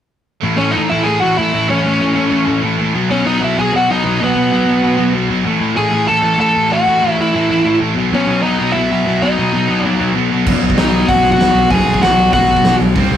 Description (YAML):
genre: punk rock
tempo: 192 BPM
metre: 4/4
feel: straight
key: unclear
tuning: A4 = 440 Hz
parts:
  - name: distorted electric guitar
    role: riff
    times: 0.4-13.2 s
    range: A2 to C4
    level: -20 LUFS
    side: right 6 dB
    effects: distortion
  - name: sludgy distorted guitar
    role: riff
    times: 0.4-13.2 s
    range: A2 to C4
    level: -16 LUFS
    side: left 3 dB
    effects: overdrive
  - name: smooth overdriven lead guitar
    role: melody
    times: 0.6-12.8 s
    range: B3 to A5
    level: -14 LUFS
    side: equal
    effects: none
  - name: picked electric bass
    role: bass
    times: 10.5-13.2 s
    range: B1 to C2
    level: -19 LUFS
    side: right 1 dB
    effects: none
  - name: big rock drum kit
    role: drums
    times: 10.5-13.0 s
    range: crash cymbal, hi-hat, kick drum, snare drum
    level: -17 LUFS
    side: right 1 dB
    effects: none
room: moderate small room reverb, RT60 0.5 s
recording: rough rehearsal-room recording, warm saturation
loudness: -12 LUFS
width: side -10 dB against mid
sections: 0.4-10.5 A section; 10.5-13.2 B section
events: none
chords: 0.4 A; 2.9 B; 5.5 A5; 8.0 B